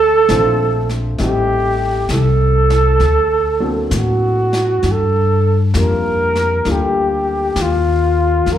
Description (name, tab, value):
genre	jazz ballad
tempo	66 BPM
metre	4/4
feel	swing 68% on 8ths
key	unclear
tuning	A4 = 440 Hz
part	mellow flugelhorn	melody	0.0-8.6 s	F4 to Bb4	-15 LUFS	right 1 dB	slapback echo
part	warm baby grand piano	accompaniment	0.0-8.5 s	F3 to C5	-23 LUFS	left 2 dB	slapback echo
part	upright bass	bass	0.0-8.6 s	A1 to A2	-17 LUFS	left 1 dB	none
part	jazz brush drum kit	drums	0.3-8.6 s	brushed snare drum, hi-hat, snare drum	-27 LUFS	equal	none
room	moderate club reverb, RT60 0.8 s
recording	live gig heard through the venue's PA, club reverb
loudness	-13 LUFS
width	side -10 dB against mid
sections	0.0-8.6 A section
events	none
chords	0.0 Dm7; 1.2 Am7b5; 3.0 D7b13; 4.8 Gm7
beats	0.30 | 1.20 2.10 3.01 3.92 | 4.83 5.74 6.65 7.56 | 8.46